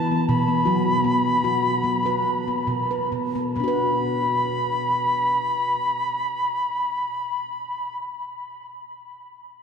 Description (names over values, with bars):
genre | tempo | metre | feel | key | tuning
world meditative | 66-81 BPM | 4/4 | swing 54% on 16ths | B minor pentatonic | A4 = 438 Hz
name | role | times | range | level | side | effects
bright reedy bansuri | melody | 0.0-8.0 s | A5 to B5 | -23 LUFS | left 1 dB | diffuse ambient delay
handpan | arpeggios | 0.0-8.3 s | B2 to B4 | -24 LUFS | equal | diffuse ambient delay
room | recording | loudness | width
wet cathedral reverb, RT60 5.0 s | in a vast, echoing space | -20 LUFS | side -6 dB against mid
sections
0.0-3.6 A section; 3.6-7.2 B section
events
slowing down 0.0-3.6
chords
0.3 B5; 3.6 Bm